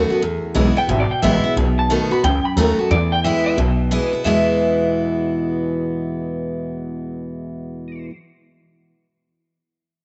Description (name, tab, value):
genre	rockabilly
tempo	179 BPM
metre	4/4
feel	swing 64% on 8ths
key	E major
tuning	A4 = 440 Hz
part	electric guitar through a small old amp	melody	0.0-8.1 s	D5 to B5	-25 LUFS	equal	tremolo, tape echo
part	picked steel-string acoustic guitar	accompaniment	0.0-8.1 s	E2 to F#4	-22 LUFS	equal	none
part	upright bass	bass	0.0-8.0 s	G#1 to E2	-23 LUFS	equal	none
room	light reverb, small room ambience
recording	nothing above 7.9 kHz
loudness	-19 LUFS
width	mono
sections	0.0-1.6 A section; 1.6-4.2 B section; 4.2-6.9 C section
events	none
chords	0.2 E; 1.6 B7; 2.9 E